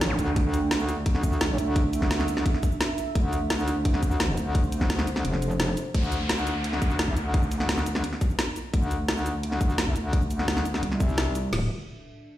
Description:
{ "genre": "dark technical drum and bass", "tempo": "172 BPM", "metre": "4/4", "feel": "straight", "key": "unclear", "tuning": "A4 = 440 Hz", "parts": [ { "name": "deep dark ambient pad", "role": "sustained chords", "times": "0.0-5.9, 11.7 s", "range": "D4 to G5", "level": "-32 LUFS", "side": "right 3 dB", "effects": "chorus, built-in reverb, sidechain pumping" }, { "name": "metallic wobble bass", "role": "bass", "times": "0.0-11.7 s", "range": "D1 to D2", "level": "-27 LUFS", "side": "equal", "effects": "chorus, sidechain pumping" }, { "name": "drum and bass drum kit", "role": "drums", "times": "0.0-11.4 s", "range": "hi-hat, shaker, snare drum", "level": "-29 LUFS", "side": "equal", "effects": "none" }, { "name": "zap and downlifter", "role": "sound effects", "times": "0.1-0.2, 5.9-8.7 s", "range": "none", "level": "-35 LUFS", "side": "left 1 dB", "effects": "none" }, { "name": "drum and bass drum kit", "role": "drums", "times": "0.4-11.6 s", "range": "crash cymbal, kick drum, snare drum", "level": "-24 LUFS", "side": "equal", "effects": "none" } ], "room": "light reverb", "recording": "played on a big sound system in a bare room, large studio reverb", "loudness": "-23 LUFS", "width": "side -14 dB against mid", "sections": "0.0-5.9 A section; 5.9-11.5 B section", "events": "drop 0.0-5.9; kick drops out 5.2-5.9", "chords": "0.0 Dsus2; 5.9 Csus2; 11.5 Dsus2", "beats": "0.01 | 0.36 0.71 1.06 1.41 | 1.76 2.11 2.46 2.81 | 3.15 3.50 3.85 4.20 | 4.55 4.90 5.25 5.60 | 5.95 6.29 6.64 6.99 | 7.34 7.69 8.04 8.39 | 8.74 9.08 9.43 9.78 | 10.13 10.48 10.83 11.18 | 11.53" }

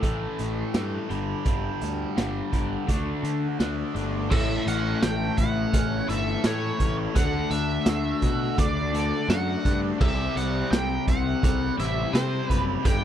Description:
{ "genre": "classic rock", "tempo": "84 BPM", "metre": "4/4", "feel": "straight", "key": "unclear", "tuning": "A4 = 440 Hz", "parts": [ { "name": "biting overdriven guitar", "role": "riff", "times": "0.0-13.0 s", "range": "G2 to A4", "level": "-32 LUFS", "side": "right 13 dB", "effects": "phaser" }, { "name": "overdriven electric guitar", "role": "riff", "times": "0.0-13.0 s", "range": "G2 to D4", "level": "-30 LUFS", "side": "left 14 dB", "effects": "none" }, { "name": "fuzz picked electric bass", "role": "bass", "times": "0.0-13.0 s", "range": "F#1 to D3", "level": "-29 LUFS", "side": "right 1 dB", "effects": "overdrive" }, { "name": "raw garage drum kit", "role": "drums", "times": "0.0-13.0 s", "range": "crash cymbal, hi-hat, kick drum, snare drum, tambourine", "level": "-26 LUFS", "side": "right 1 dB", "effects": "none" }, { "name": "octave-fuzz lead guitar", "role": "melody", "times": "4.3-13.0 s", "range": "C5 to G5", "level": "-31 LUFS", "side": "right 1 dB", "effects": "wah, distortion, slapback echo" }, { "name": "cowbell", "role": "percussion", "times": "4.3-13.0 s", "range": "none", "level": "-39 LUFS", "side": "right 4 dB", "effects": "none" } ], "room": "little or no reverb", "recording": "none", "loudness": "-23 LUFS", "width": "side -10 dB against mid", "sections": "0.0-4.3 A section; 4.3-13.0 B section", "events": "none", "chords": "0.0 A5; 1.1 G5; 2.9 D5; 4.3 A; 7.2 D; 10.0 C", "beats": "0.03 0.74 | 1.45 2.17 2.88 3.60 | 4.31 5.02 5.73 6.45 | 7.16 7.87 8.58 9.29 | 10.00 10.71 11.42 12.13 | 12.85" }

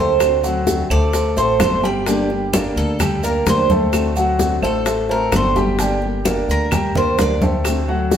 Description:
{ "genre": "latin, Cuban son and guajira", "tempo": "129 BPM", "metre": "4/4", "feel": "straight", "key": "G harmonic minor", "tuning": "A4 = 441 Hz", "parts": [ { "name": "Cuban tres", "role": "melody", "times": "0.0-7.4 s", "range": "A4 to D5", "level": "-20 LUFS", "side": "right 3 dB", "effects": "none" }, { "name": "fingerpicked old ladder-braced acoustic guitar", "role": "accompaniment", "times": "0.0-8.2 s", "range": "D3 to G4", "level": "-25 LUFS", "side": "left 2 dB", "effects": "none" }, { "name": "warm concert grand piano", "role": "arpeggios", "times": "0.0-8.2 s", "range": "F#3 to G5", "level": "-21 LUFS", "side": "equal", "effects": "none" }, { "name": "upright bass", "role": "bass", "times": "0.0-8.2 s", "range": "G1 to D2", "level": "-22 LUFS", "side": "equal", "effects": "none" }, { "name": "bongos", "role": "percussion", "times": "0.2-8.2 s", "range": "none", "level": "-25 LUFS", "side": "left 4 dB", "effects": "none" }, { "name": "claves", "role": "percussion", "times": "0.2-7.9 s", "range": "none", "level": "-32 LUFS", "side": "right 3 dB", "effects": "none" }, { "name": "congas", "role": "percussion", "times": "0.2-8.2 s", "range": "none", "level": "-23 LUFS", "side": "equal", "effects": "none" }, { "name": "maracas", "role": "percussion", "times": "0.2-8.2 s", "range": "none", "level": "-32 LUFS", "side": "right 3 dB", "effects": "none" } ], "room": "wet stone room reverb, RT60 1.3 s", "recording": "band playing live in one room", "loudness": "-15 LUFS", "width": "side -8 dB against mid", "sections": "0.0-8.2 A section", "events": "Cuban tres solo 0.0-8.2", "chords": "0.2 D7; 2.1 Gm; 3.9 D7; 5.8 Gm; 7.6 D7", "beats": "| 0.20 0.67 1.14 1.60 | 2.07 2.53 3.00 3.46 | 3.93 4.39 4.86 5.32 | 5.79 6.25 6.72 7.18 | 7.65 8.11" }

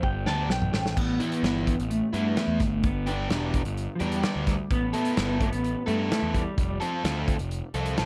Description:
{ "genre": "indie rock", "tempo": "128 BPM", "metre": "4/4", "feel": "straight", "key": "A minor", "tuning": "A4 = 439 Hz", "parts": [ { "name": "electric guitar at the edge of break-up", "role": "melody", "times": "0.0-6.8 s", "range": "F3 to A5", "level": "-32 LUFS", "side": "equal", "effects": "tremolo, tape echo" }, { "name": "crunchy overdriven guitar", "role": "riff", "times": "0.0-8.1 s", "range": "E3 to A4", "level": "-32 LUFS", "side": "equal", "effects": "none" }, { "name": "fuzz picked electric bass", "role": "bass", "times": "0.0-8.1 s", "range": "E1 to G2", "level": "-32 LUFS", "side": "equal", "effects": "overdrive" }, { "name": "loose indie drum kit", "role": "drums", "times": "0.0-8.1 s", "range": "crash cymbal, hi-hat, kick drum, snare drum, toms", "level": "-31 LUFS", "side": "equal", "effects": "none" } ], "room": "light reverb", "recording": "dark, warm production", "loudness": "-27 LUFS", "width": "mono", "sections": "1.0-8.1 A section", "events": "drum fill 0.0-1.0", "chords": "0.0 G; 1.0 Asus2; 2.6 G; 4.7 Asus2; 6.6 F", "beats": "0.03 0.50 | 0.96 1.43 1.90 2.37 | 2.83 3.30 3.77 4.24 | 4.70 5.17 5.64 6.11 | 6.57 7.04 7.51 7.97" }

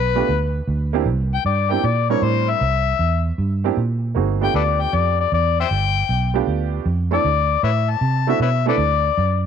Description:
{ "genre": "electric blues shuffle", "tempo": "155 BPM", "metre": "4/4", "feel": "swing 67% on 8ths", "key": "G mixolydian", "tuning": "A4 = 441 Hz", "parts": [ { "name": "overdriven harmonica", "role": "melody", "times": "0.0-9.4 s", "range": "A4 to A5", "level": "-20 LUFS", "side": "left 11 dB", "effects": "none" }, { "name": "vintage muted fingered electric bass", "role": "bass", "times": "0.0-9.5 s", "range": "G1 to C3", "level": "-20 LUFS", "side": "right 2 dB", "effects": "none" }, { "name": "clear upright piano", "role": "accompaniment", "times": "0.2-8.8 s", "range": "G3 to Bb4", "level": "-23 LUFS", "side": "right 16 dB", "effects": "none" } ], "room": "light reverb, small room ambience", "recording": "1960s-style stereo with parts hard left and right", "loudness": "-17 LUFS", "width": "side -7 dB against mid", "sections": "0.0-9.5 A section", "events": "none", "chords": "0.0 G; 1.1 C9; 4.2 G9; 7.2 D9", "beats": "0.29 0.68 | 1.06 1.45 1.84 2.23 | 2.61 3.00 3.39 3.77 | 4.16 4.55 4.93 5.32 | 5.71 6.09 6.48 6.87 | 7.25 7.64 8.02 8.41 | 8.79 9.18" }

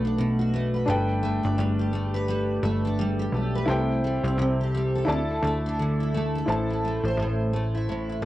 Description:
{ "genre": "pop", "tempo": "86 BPM", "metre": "4/4", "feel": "swing 60% on 16ths", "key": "G major", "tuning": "A4 = 440 Hz", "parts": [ { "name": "picked steel-string acoustic guitar", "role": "accompaniment", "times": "0.0-8.2 s", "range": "A2 to C5", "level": "-26 LUFS", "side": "equal", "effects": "double-tracked left and right, cassette tape" }, { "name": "warm concert grand piano", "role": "accompaniment", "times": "0.0-8.2 s", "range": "D4 to A5", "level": "-31 LUFS", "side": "left 1 dB", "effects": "cassette tape" }, { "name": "plucky analog bass", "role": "bass", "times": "0.0-8.2 s", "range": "G1 to D2", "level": "-27 LUFS", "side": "equal", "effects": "none" } ], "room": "light reverb", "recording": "home recording on cassette", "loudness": "-23 LUFS", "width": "side -15 dB against mid", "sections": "0.0-6.5 A section; 6.5-8.2 B section", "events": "none", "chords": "0.0 Bm7; 0.9 Gadd9; 3.7 C6; 5.1 Dsus2; 6.5 Am", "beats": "0.19 | 0.89 1.59 2.29 2.98 | 3.68 4.38 5.08 5.78 | 6.48 7.18 7.88" }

